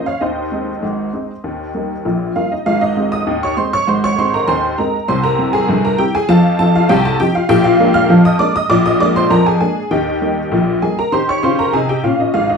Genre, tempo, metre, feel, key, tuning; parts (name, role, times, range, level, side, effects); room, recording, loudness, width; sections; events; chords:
ragtime piano; 99 BPM; 2/4; straight; Ab major; A4 = 440 Hz
honky-tonk upright piano; solo; 0.0-12.6 s; G1 to F6; -13 LUFS; equal
wet studio ambience, RT60 0.5 s; heard from further back in the room; -12 LUFS; side -5 dB against mid
0.0-2.7 A section; 2.7-12.6 B section
0.2 Ab/Eb; 1.4 Eb; 2.7 Ab; 5.1 C7; 6.3 F7; 7.5 Bb7; 9.9 Eb